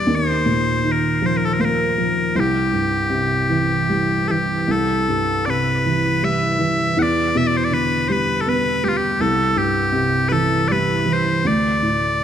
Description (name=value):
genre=celtic folk, Celtic slow air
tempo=79 BPM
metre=3/4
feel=uneven beats, rubato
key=unclear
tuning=A4 = 441 Hz
part: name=loud bright bagpipes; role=melody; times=0.0-12.2 s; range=F4 to F#5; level=-20 LUFS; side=left 2 dB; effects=tape echo
part: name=felt-muted upright piano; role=accompaniment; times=0.0-12.2 s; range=C2 to B3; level=-19 LUFS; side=right 1 dB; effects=none
room=moderate recital hall reverb, RT60 1.4 s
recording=dark, warm production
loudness=-16 LUFS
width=side -9 dB against mid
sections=0.0-12.2 A section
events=none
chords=0.1 Ebsus2; 2.3 C; 7.0 Em7; 9.2 C; 11.4 D5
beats=| 0.08 0.84 1.59 | 2.34 3.10 3.88 | 4.67 5.45 6.22 | 6.97 7.72 8.45 | 9.18 9.92 10.68 | 11.45 12.23